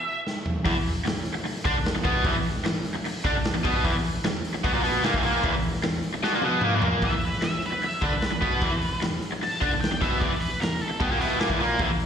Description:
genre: garage rock duo or trio.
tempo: 151 BPM.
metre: 4/4.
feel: straight.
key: E minor.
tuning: A4 = 441 Hz.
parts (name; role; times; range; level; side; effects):
octave-fuzz lead guitar; melody; 0.0-0.2, 7.0-11.4 s; E4 to A5; -30 LUFS; equal; distortion, slapback echo, digital delay.
raw garage drum kit; drums; 0.3-12.1 s; hi-hat, kick drum, snare drum, toms; -27 LUFS; equal; none.
overdriven electric guitar; riff; 0.6-12.1 s; E2 to D4; -25 LUFS; equal; slapback echo.
room: little or no reverb.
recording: live gig heard through the venue's PA, recital hall reverb.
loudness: -23 LUFS.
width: side -8 dB against mid.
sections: 0.7-7.0 A section; 7.0-12.1 B section.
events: break 0.0-0.7; drum fill 0.3-0.7, 6.2-7.0; lead electric guitar solo 7.0-12.1.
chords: 0.0 N.C.; 0.7 E5.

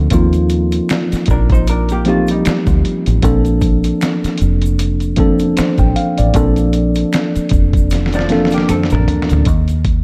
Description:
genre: R&B, neo-soul.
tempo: 77 BPM.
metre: 4/4.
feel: swing 56% on 16ths.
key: Bb major.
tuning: A4 = 440 Hz.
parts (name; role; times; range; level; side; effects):
mellow tine electric piano; accompaniment; 0.0-9.5 s; F3 to G5; -18 LUFS; equal; none.
deep dub fingered electric bass; bass; 0.0-10.0 s; F1 to Eb2; -18 LUFS; equal; none.
dusty soul sampler-style drum kit; drums; 0.1-10.0 s; hi-hat, kick drum, snare drum, toms; -19 LUFS; equal; overdrive.
egg shaker and finger snaps; percussion; 0.1-9.8 s; none; -37 LUFS; equal; none.
vintage hollow-body jazz guitar; second line; 1.3-3.2, 8.1-9.5 s; F3 to C5; -25 LUFS; equal; none.
room: light reverb.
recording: dark, warm production.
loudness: -14 LUFS.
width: mono.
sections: 0.0-9.5 A section.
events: drum fill 7.9-9.5.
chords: 0.0 Eb69; 3.2 Bbmaj9; 9.5 N.C..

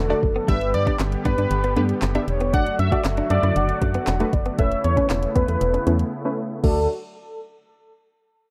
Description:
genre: dance-pop.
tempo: 117 BPM.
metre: 4/4.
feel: straight.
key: D major.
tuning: A4 = 444 Hz.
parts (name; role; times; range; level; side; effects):
mellow horn-like synth lead; melody; 0.0-6.9 s; A4 to F#5; -30 LUFS; equal; chorus, low-pass filter.
soft supersaw; sustained chords; 0.0-6.9 s; C#3 to G4; -32 LUFS; equal; sidechain pumping, low-pass filter.
organ-like FM bass; bass; 0.0-6.9 s; E1 to G2; -26 LUFS; equal; sidechain pumping.
unison pluck; accompaniment; 0.1-6.9 s; A3 to E5; -31 LUFS; equal; sidechain pumping, low-pass filter.
direct-recorded clean electric guitar; riff; 0.1-6.8 s; G3 to F#4; -30 LUFS; equal; subtle chorus, low-pass filter.
smooth R&B drum kit; drums; 0.2-6.8 s; crash cymbal, handclaps, hi-hat, kick drum, snare drum; -26 LUFS; equal; none.
octave-doubled lead; melody; 0.5-6.9 s; A4 to F#5; -28 LUFS; equal; chorus, sidechain pumping, low-pass filter, digital delay.
room: light reverb.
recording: rough home demo mix.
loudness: -21 LUFS.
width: mono.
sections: 0.0-6.6 A section; 6.6-8.5 B section.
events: filter sweep 0.0-6.6; break 6.1-6.6.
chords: 0.5 G; 2.5 D/F#; 4.6 Aadd9/E; 6.6 D.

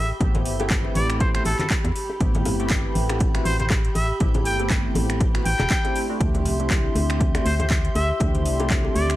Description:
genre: deep house.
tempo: 120 BPM.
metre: 4/4.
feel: swing 57% on 16ths.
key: A minor.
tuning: A4 = 439 Hz.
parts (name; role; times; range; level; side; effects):
trumpet with straight mute; melody; 0.0-9.1 s; A4 to G5; -28 LUFS; equal; tape echo.
dark analog pad; sustained chords; 0.0-9.2 s; G4 to C6; -31 LUFS; equal; chorus, sidechain pumping.
organ-like FM bass; bass; 0.0-9.2 s; E1 to E2; -25 LUFS; equal; sidechain pumping.
string machine, violins; texture; 0.0-9.2 s; G4 to G6; -38 LUFS; equal; ensemble chorus, sidechain pumping.
chorused polysynth; stabs; 0.2-9.2 s; A3 to G4; -28 LUFS; equal; sidechain pumping, tape echo.
electronic kick drum; drums; 0.2-8.8 s; none; -23 LUFS; equal; overdrive.
house drum kit; drums; 0.2-9.2 s; finger snaps, handclaps, hi-hat; -30 LUFS; equal; overdrive.
bongos and congas; percussion; 0.2-9.1 s; none; -31 LUFS; left 2 dB; none.
room: light reverb, digital ambience.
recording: vinyl crackle.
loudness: -19 LUFS.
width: side -15 dB against mid.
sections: 0.0-9.2 A section.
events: none.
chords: 0.0 Am9; 6.0 D9sus4.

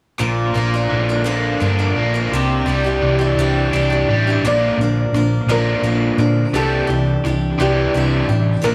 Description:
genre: folk rock and heartland rock.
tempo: 57 BPM (dotted quarters).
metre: 6/8.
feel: straight.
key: unclear.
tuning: A4 = 438 Hz.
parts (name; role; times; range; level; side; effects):
picked swing-style acoustic guitar; accompaniment; 0.2-8.7 s; Bb2 to Bb4; -24 LUFS; equal; analog delay.
overdriven electric guitar; riff; 0.2-8.7 s; Bb2 to D4; -22 LUFS; equal; analog delay.
hollow-body short-scale fingered electric bass; bass; 0.2-8.7 s; A1 to Bb2; -21 LUFS; equal; none.
steel pan; melody; 4.5-8.7 s; G4 to D5; -25 LUFS; equal; analog delay.
room: light reverb, small room ambience.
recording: echo-heavy mix.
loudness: -17 LUFS.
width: mono.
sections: 0.2-4.4 A section; 4.4-8.7 B section.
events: none.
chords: 0.2 Bb; 2.3 Cadd9; 4.4 Bb; 6.5 Cadd9.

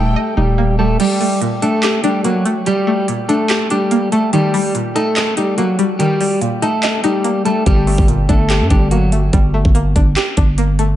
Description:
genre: hip hop, trap.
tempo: 144 BPM.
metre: 4/4.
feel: half-time.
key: G harmonic minor.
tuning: A4 = 440 Hz.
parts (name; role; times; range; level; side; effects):
electric guitar at the edge of break-up; melody; 0.0-9.1 s; F#3 to A4; -17 LUFS; equal; spring reverb, low-pass filter, diffuse ambient delay.
string-like resonator pluck; accompaniment; 0.0-11.0 s; Bb2 to Eb5; -19 LUFS; equal; chorus, phaser, low-pass filter.
hollow soft pad; sustained chords; 0.0-1.0 s; G4 to G5; -37 LUFS; right 1 dB; none.
growling 808-style bass; bass; 0.0-1.0, 7.7-11.0 s; Eb1 to G2; -15 LUFS; equal; none.
trap drum kit; drums; 1.0-10.9 s; crash cymbal, handclaps, hi-hat, kick drum; -17 LUFS; equal; overdrive.
room: moderate plate reverb, RT60 2.0 s, digital ambience.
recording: dreamy mix soaked in reverb, nothing above 10.9 kHz.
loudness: -13 LUFS.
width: side -12 dB against mid.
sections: 1.0-11.0 A section.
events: kick muted 1.0-7.7.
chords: 0.0 Eb; 1.0 Gmadd9; 4.3 Eb; 7.7 Gmadd9.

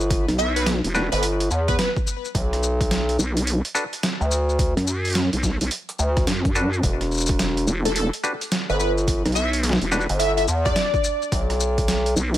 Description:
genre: glitch hop.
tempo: 107 BPM.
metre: 4/4.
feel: swing 64% on 16ths.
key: E minor.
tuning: A4 = 438 Hz.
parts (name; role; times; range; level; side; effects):
gritty driven synth bass; bass; 0.0-12.1 s; E1 to E2; -21 LUFS; equal; overdrive.
boom bap sampler-style drum kit; drums; 0.0-12.4 s; hi-hat, rim click, shaker, snare drum; -26 LUFS; equal; overdrive.
electronic kick drum; drums; 0.1-11.9 s; none; -24 LUFS; equal; overdrive.
vowel-sweep wobble bass; bass; 0.3-12.4 s; E1 to F#2; -21 LUFS; equal; chorus.
plucky unison lead; melody; 0.4-1.9, 7.9-11.4 s; A4 to E5; -26 LUFS; equal; analog chorus, ping-pong delay.
muted clav; stabs; 0.9-10.1 s; D4 to B4; -27 LUFS; left 1 dB; vintage 12-bit sampler grit, sidechain pumping, ping-pong delay.
room: little or no reverb.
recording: none.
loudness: -19 LUFS.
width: side -13 dB against mid.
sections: 0.0-12.4 A section.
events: none.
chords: 0.0 Em; 2.3 Bm; 6.8 Em7; 11.3 N.C..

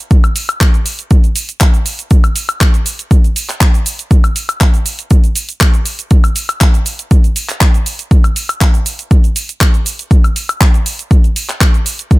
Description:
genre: house.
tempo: 120 BPM.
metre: 4/4.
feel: straight.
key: none.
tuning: none.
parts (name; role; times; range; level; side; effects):
electronic kick drum; drums; 0.1-12.2 s; none; -9 LUFS; equal; overdrive.
house drum kit; drums; 0.1-12.2 s; handclaps, hi-hat, shaker, woodblock; -17 LUFS; equal; sidechain pumping on hats, sidechain pumping on perc.
room: little or no reverb.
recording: none.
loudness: -10 LUFS.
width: side -20 dB against mid.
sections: 0.0-12.2 A section.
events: none.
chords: none.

